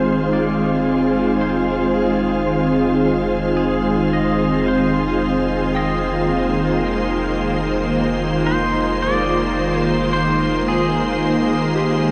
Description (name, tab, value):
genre	ambient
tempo	55 BPM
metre	4/4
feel	straight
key	F dorian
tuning	A4 = 440 Hz
part	pedal steel guitar	melody	0.0-11.7 s	Ab4 to Eb5	-29 LUFS	equal	diffuse ambient delay
part	soft additive organ-like pad	sustained chords	0.0-12.1 s	Eb3 to C5	-19 LUFS	equal	ensemble chorus, built-in reverb
part	soft synth bell	arpeggios	0.0-12.1 s	Eb4 to G5	-35 LUFS	equal	none
part	warm sub bass	bass	0.0-12.1 s	F1	-33 LUFS	equal	none
room	wet shimmer reverb, RT60 7.6 s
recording	none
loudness	-18 LUFS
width	mono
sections	0.0-12.1 A section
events	fade-in on sub bass 0.0-12.1; fade-in on pedal steel guitar 0.0-12.1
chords	0.0 Fm7